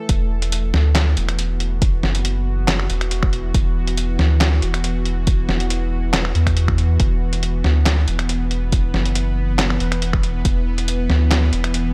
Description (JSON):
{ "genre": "deep dubstep", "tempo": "139 BPM", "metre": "4/4", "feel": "swing 53% on 16ths, half-time", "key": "unclear", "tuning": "A4 = 440 Hz", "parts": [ { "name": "bowed-like drone", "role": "sustained chords", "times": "0.0-11.9 s", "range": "E3 to B4", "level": "-29 LUFS", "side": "equal", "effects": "built-in reverb, vintage 12-bit sampler grit" }, { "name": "soft dub sub bass", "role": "bass", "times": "0.1-11.9 s", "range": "E1 to E2", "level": "-21 LUFS", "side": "equal", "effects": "none" }, { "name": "electronic kick drum", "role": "drums", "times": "0.1-10.5 s", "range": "none", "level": "-21 LUFS", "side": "equal", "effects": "none" }, { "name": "trip hop sampler-style drum kit", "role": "drums", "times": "0.1-11.8 s", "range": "finger snaps, handclaps, hi-hat, snare drum", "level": "-25 LUFS", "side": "equal", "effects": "none" } ], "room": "little or no reverb", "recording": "none", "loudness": "-19 LUFS", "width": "mono", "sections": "0.1-11.9 A section", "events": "drop 0.1-11.9", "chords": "0.1 E5" }